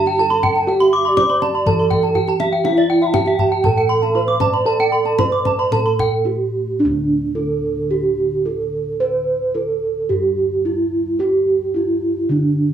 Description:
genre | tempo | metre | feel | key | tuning
Balinese gamelan | 109-122 BPM | 4/4 | straight | D slendro | A4 = 440 Hz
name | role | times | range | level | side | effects
gamelan-type bronze metallophone | melody | 0.0-12.7 s | D4 to D5 | -18 LUFS | right 3 dB | none
mellow hollow bansuri | second line | 0.0-5.8 s | C5-46c to B5+50c | -25 LUFS | right 3 dB | none
gamelan-type bronze metallophone | arpeggios | 0.0-6.1 s | E5+30c to D6 | -21 LUFS | left 2 dB | none
gamelan-type bossed gongs | bass | 0.0-12.7 s | D2 to C5-45c | -23 LUFS | left 1 dB | none
kendang | percussion | 0.1-6.1 s | none | -23 LUFS | left 2 dB | none
gamelan-type bronze metallophone | arpeggios | 0.3-6.0 s | D5 to D6 | -22 LUFS | right 2 dB | none
room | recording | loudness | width
light reverb | studio reverb | -15 LUFS | side -9 dB against mid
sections
0.0-6.8 A section; 6.8-12.7 B section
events
break 6.0-6.8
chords
none

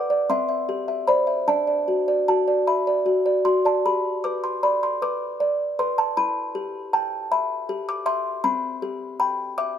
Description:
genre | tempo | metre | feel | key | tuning
classical, lullaby for music box | 52 BPM (dotted quarters) | 6/8 | rubato | G major | A4 = 440 Hz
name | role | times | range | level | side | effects
music box | solo | 0.0-9.8 s | C4 to D6 | -21 LUFS | equal | none
room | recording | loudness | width
light reverb | none | -21 LUFS | side -9 dB against mid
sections
0.0-3.9 A section; 3.9-9.8 B section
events
none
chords
0.3 C; 1.5 D; 3.9 G; 6.2 Em; 8.4 Cmaj7

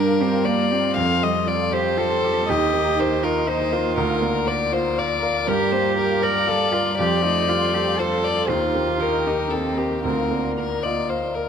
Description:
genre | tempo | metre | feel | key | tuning
neoclassical piano and strings | 119 BPM | 3/4 | rubato | unclear | A4 = 441 Hz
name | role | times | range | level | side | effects
warm violin | melody | 0.0-11.5 s | G4 to F5 | -23 LUFS | left 6 dB | none
dark cello | second line | 0.0-11.1 s | Bb3 to Bb4 | -24 LUFS | right 5 dB | none
felt-muted upright piano | accompaniment | 0.0-11.5 s | D2 to G5 | -25 LUFS | right 3 dB | none
warm chamber string section | sustained chords | 0.0-11.5 s | G3 to C5 | -31 LUFS | left 3 dB | none
concert harp | arpeggios | 0.0-11.5 s | Eb4 to Bb5 | -31 LUFS | right 1 dB | none
room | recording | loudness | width
light reverb | close, detailed microphones | -19 LUFS | side -7 dB against mid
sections
0.0-11.5 A section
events
none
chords
0.0 Gm7; 1.0 Fadd9; 2.5 Eb; 4.0 Bb/D; 5.5 Gm7; 7.0 Fadd9; 8.5 Eb; 10.0 Bb/D

